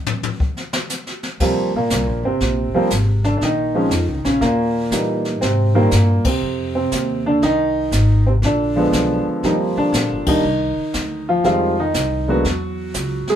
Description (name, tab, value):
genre	jazz piano trio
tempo	120 BPM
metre	4/4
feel	swing 66% on 8ths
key	Eb major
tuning	A4 = 440 Hz
part	jazz brush drum kit	drums	0.1-13.4 s	brushed snare drum, crash cymbal, hi-hat, kick drum, ride cymbal, snare drum, toms	-24 LUFS	left 1 dB	none
part	warm grand piano	melody	1.4-13.4 s	Bb2 to G#4	-18 LUFS	right 1 dB	none
part	upright bass	bass	1.4-13.3 s	Eb1 to Bb2	-21 LUFS	equal	none
room	moderate studio ambience, RT60 0.5 s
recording	band playing live in one room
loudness	-16 LUFS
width	side -10 dB against mid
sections	0.0-1.4 A section; 1.4-13.4 B section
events	drum solo 0.0-1.4; band accent 6.2, 10.2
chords	0.0 N.C.; 1.4 Eb6; 3.4 Bbm; 4.4 Eb; 5.4 Abmaj9; 7.4 Ab; 8.4 Bb7b9; 9.4 Eb6; 10.4 Cmadd9; 11.4 Fm9; 12.4 N.C.